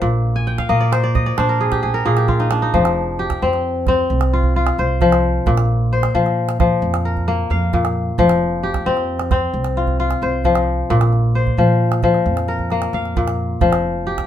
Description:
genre	west african traditional, West African string and xylophone music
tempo	88 BPM (dotted quarters)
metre	12/8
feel	straight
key	F dorian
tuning	A4 = 437 Hz
part	kora	arpeggios	0.0-14.3 s	Bb2 to Ab5	-17 LUFS	left 2 dB	none
part	upright bass	bass	0.0-14.2 s	F1 to Bb2	-21 LUFS	right 1 dB	none
part	calabash	percussion	0.0-14.3 s	none	-23 LUFS	right 4 dB	none
room	moderate studio reverb, RT60 0.5 s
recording	minimal, uncompressed stereo recording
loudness	-15 LUFS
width	side -10 dB against mid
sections	0.0-2.7 A section; 2.7-14.3 B section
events	kora fill 0.4-2.7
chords	0.0 Bb; 2.7 F5; 5.5 Bb5; 8.2 F5; 10.9 Bb5; 13.6 F5

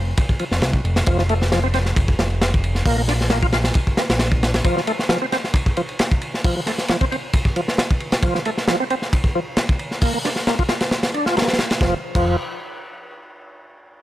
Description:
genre	breakbeat, breaks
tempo	134 BPM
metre	4/4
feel	straight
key	F major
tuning	A4 = 440 Hz
part	fat analog bass	bass	0.0-4.6, 11.8-12.4 s	F1 to C2	-21 LUFS	equal	none
part	crunchy breakbeat drum kit	drums	0.2-12.2 s	crash cymbal, hi-hat, kick drum, ride cymbal, snare drum	-19 LUFS	equal	none
part	overdriven tonewheel organ	riff	0.4-12.4 s	F3 to F4	-23 LUFS	equal	chorus vibrato, slow rotary speaker, tube saturation, low-pass filter, ping-pong delay
room	small room ambience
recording	none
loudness	-17 LUFS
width	side -14 dB against mid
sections	0.0-11.8 A section; 11.8-13.6 B section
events	filter sweep on tonewheel organ 0.0-11.8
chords	0.0 F5; 2.9 N.C.; 4.7 F5; 10.0 Bb; 11.8 N.C.

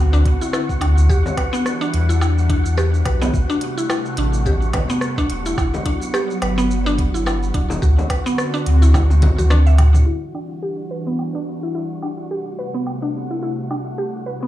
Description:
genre	organic downtempo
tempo	107 BPM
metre	4/4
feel	swing 57% on 16ths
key	E minor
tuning	A4 = 440 Hz
part	airy breathy pad	sustained chords	0.0-14.5 s	C3 to F#4	-27 LUFS	right 1 dB	chorus, sidechain pumping
part	warm sub bass	bass	0.0-10.0 s	D1 to F#2	-15 LUFS	equal	sidechain pumping
part	wind-like tuned noise texture	texture	0.0-14.5 s	F#4 to F#5	-31 LUFS	right 1 dB	built-in reverb
part	mallet-like synth pluck	arpeggios	0.1-14.5 s	B3 to E5	-24 LUFS	equal	chorus, cassette tape, tape echo
part	organic electronic drum kit	drums	0.1-14.5 s	hi-hat, rim click, shaker, toms, woodblock	-27 LUFS	right 1 dB	low-pass filter on perc, low-pass filter on hats, low-pass filter on snare, low-pass filter on toms
part	electronic kick drum	drums	0.3-9.4 s	none	-20 LUFS	equal	none
part	frame drum	percussion	1.3-9.4 s	none	-26 LUFS	left 4 dB	none
room	digital ambience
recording	dry, gritty hardware recording, low-pass filter, studio reverb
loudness	-16 LUFS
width	side -14 dB against mid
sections	0.0-10.1 A section; 10.1-14.5 B section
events	drum fill 8.9-10.1; kick drops out 9.5-10.1; filter sweep on synth pluck 10.1-14.5; filter sweep on analog synth pad 10.1-14.5; filter sweep 10.1-14.5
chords	0.0 D7; 1.1 Em7; 3.3 Am7; 5.6 Gmaj7; 7.8 D7; 10.1 Em7; 12.3 Am7

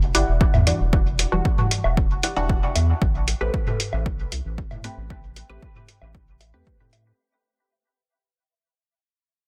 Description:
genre	dub techno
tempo	115 BPM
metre	4/4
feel	straight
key	unclear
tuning	A4 = 442 Hz
part	round analog bass	bass	0.0-7.1 s	E1 to A2	-26 LUFS	equal	sidechain pumping
part	filtered dub chord stab	riff	0.1-2.4 s	E4 to F#5	-31 LUFS	equal	phaser, lush chorus, vintage 12-bit sampler grit, sidechain pumping, dub echo
part	electronic hi-hat	drums	0.1-7.0 s	none	-27 LUFS	equal	soft clipping on snare
part	electronic kick drum	drums	0.4-6.8 s	none	-24 LUFS	equal	overdrive
part	electronic toms and woodblock	percussion	0.5-7.0 s	none	-28 LUFS	equal	sidechain pumping on perc, sidechain pumping on toms
part	filtered dub chord stab	stabs	0.7-6.8 s	E3 to B4	-31 LUFS	equal	phaser, sidechain pumping, dub echo
room	digital ambience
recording	dense, heavily limited modern master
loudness	-22 LUFS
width	mono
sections	0.0-7.2 A section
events	fade-out 0.0-7.2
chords	0.0 Em9; 3.0 Am9

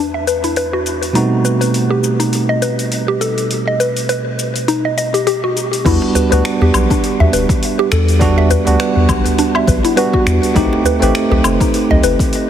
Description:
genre	organic downtempo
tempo	102 BPM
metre	4/4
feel	swing 56% on 16ths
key	E minor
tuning	A4 = 440 Hz
part	bell-like tine electric piano	accompaniment	0.0-12.5 s	E2 to G4	-17 LUFS	right 3 dB	vintage 12-bit sampler grit, sidechain pumping, ping-pong delay
part	mallet-like synth pluck	arpeggios	0.0-12.2 s	D4 to E5	-17 LUFS	left 2 dB	chorus, phaser, ping-pong delay
part	deep house drum kit	drums	0.3-12.5 s	crash cymbal, finger snaps, hi-hat, shaker, woodblock	-23 LUFS	left 2 dB	overdrive, small room reverb
part	round analog bass	bass	5.9-12.2 s	E1 to E2	-14 LUFS	left 1 dB	none
part	electronic kick drum	drums	5.9-12.3 s	none	-17 LUFS	left 1 dB	overdrive, small room reverb
part	djembe	percussion	6.0-12.2 s	none	-22 LUFS	equal	none
room	moderate huge ambient reverb, RT60 4.5 s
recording	heavily compressed radio sound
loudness	-12 LUFS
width	side -9 dB against mid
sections	0.0-5.9 A section; 5.9-12.5 B section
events	none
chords	0.0 Em9; 1.2 B7b9b13; 5.9 Em9; 10.6 B7b9b13

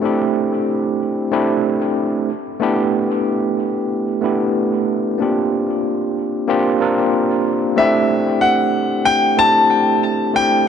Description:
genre	chillout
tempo	93 BPM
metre	4/4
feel	swing 54% on 16ths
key	unclear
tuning	A4 = 440 Hz
part	overdriven tine electric piano	accompaniment	0.0-10.7 s	A3 to Bb4	-16 LUFS	right 1 dB	auto-pan, tape echo
part	clear concert grand piano	melody	7.8-10.7 s	E5 to A5	-15 LUFS	left 3 dB	tape echo
room	wet spring reverb, RT60 2.4 s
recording	echo-heavy mix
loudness	-15 LUFS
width	side -8 dB against mid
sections	0.0-10.7 A section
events	none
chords	0.0 D9sus4; 2.3 A9sus4; 5.2 C9sus4; 7.8 D9sus4

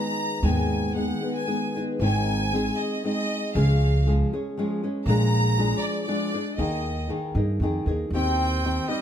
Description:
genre	mexican folk, mariachi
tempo	118 BPM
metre	3/4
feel	rubato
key	Ab major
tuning	A4 = 440 Hz
part	clear studio violin section	melody	0.0-9.0 s	D5 to A#5	-30 LUFS	equal	none
part	nylon-string guitar	accompaniment	0.0-9.0 s	G#2 to G#4	-26 LUFS	left 1 dB	none
part	upright bass	bass	0.4-8.8 s	Ab1 to G2	-24 LUFS	right 1 dB	none
part	warm trumpet	second line	8.2-9.0 s	G3 to C4	-30 LUFS	right 8 dB	none
room	light reverb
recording	close, detailed microphones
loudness	-22 LUFS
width	side -9 dB against mid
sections	0.0-2.0 A section; 2.0-9.0 B section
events	none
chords	0.0 G#m; 2.0 Ab; 3.6 Db; 5.1 Bb7; 6.6 Ebsus4; 8.1 Cm/Eb

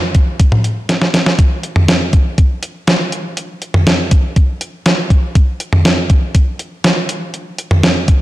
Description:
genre	pop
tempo	121 BPM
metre	4/4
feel	straight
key	none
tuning	none
part	clean 12-bit digital drum machine	drums	0.1-8.2 s	hi-hat, kick drum, snare drum, toms	-11 LUFS	equal	none
room	wet recital hall reverb, RT60 1.6 s, digital ambience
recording	blown-out, overdriven recording, overdrive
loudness	-11 LUFS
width	side -16 dB against mid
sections	0.0-8.2 A section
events	drum fill 0.9-1.4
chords	none

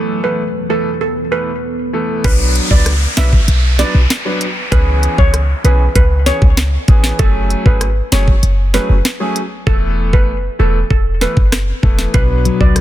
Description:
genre	dancehall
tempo	97 BPM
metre	4/4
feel	straight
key	B dorian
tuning	A4 = 441 Hz
part	clear concert grand piano	accompaniment	0.0-12.8 s	E3 to B4	-22 LUFS	left 1 dB	low-pass filter
part	deep dark ambient pad	sustained chords	0.0-2.2 s	E3 to B4	-24 LUFS	right 1 dB	chorus, built-in reverb, sidechain pumping, low-pass filter
part	steel pan	melody	0.2-12.7 s	A4 to E5	-21 LUFS	right 3 dB	low-pass filter, ping-pong delay
part	clean 808-style bass	bass	2.2-12.8 s	E1 to C#2	-14 LUFS	equal	none
part	island pop drum kit	drums	2.2-12.8 s	hi-hat, kick drum, rim click, snare drum	-13 LUFS	equal	soft clipping on snare
part	downlifter	sound effects	2.2-7.2 s	none	-22 LUFS	equal	none
part	nylon-string guitar	arpeggios	12.1-12.8 s	B2 to B3	-17 LUFS	left 6 dB	none
room	small room ambience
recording	dense, heavily limited modern master, faint mains hum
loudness	-11 LUFS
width	side -13 dB against mid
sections	0.0-2.2 A section; 2.2-12.8 B section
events	hi-hats muted 9.7-12.1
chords	0.0 Esus4; 2.2 Bm; 4.7 C#m7; 7.2 F#madd9; 9.7 Esus4; 12.1 Bm

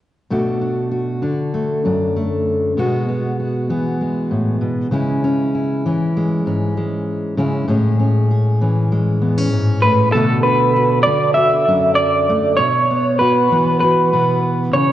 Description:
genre	folk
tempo	98 BPM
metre	4/4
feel	straight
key	unclear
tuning	A4 = 440 Hz
part	fingerpicked steel-string acoustic guitar	accompaniment	0.3-14.9 s	E2 to G#4	-16 LUFS	equal	none
part	electric guitar through a small old amp	melody	9.8-14.9 s	A4 to E5	-14 LUFS	right 1 dB	harmonic tremolo, analog delay
room	wet scoring stage reverb, RT60 2.0 s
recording	worn, warbling old tape, cassette tape, warbly pitch drift, nothing above 10.7 kHz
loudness	-15 LUFS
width	side -12 dB against mid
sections	0.3-10.1 A section; 10.1-14.9 B section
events	none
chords	0.3 Bm7; 2.8 Eadd9/B; 4.9 C#m; 7.7 Amaj7; 10.1 Bm7; 12.6 Esus2/B

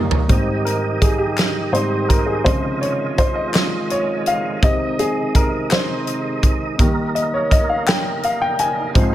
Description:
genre	slow gospel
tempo	56 BPM (dotted quarters)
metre	6/8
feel	straight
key	Ab major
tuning	A4 = 443 Hz
part	warm upright piano	accompaniment	0.0-9.1 s	Eb2 to Ab5	-20 LUFS	left 1 dB	none
part	tonewheel organ	sustained chords	0.0-9.1 s	C3 to Eb5	-25 LUFS	right 3 dB	fast rotary speaker, overdrive, chorus vibrato
part	natural country drum kit	drums	0.1-9.1 s	hi-hat, kick drum, snare drum, toms	-18 LUFS	equal	none
part	mellow French horn section	sustained chords	0.3-9.1 s	C3 to C5	-30 LUFS	right 1 dB	none
part	group handclap	percussion	1.4-8.2 s	none	-27 LUFS	left 4 dB	none
room	light reverb, small room ambience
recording	none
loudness	-16 LUFS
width	side -13 dB against mid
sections	0.3-9.1 A section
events	drum fill 0.0; upright piano solo 0.3-9.1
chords	0.3 Abmaj7; 2.5 Dbmaj7; 4.6 Abmaj7/C; 6.8 Eb

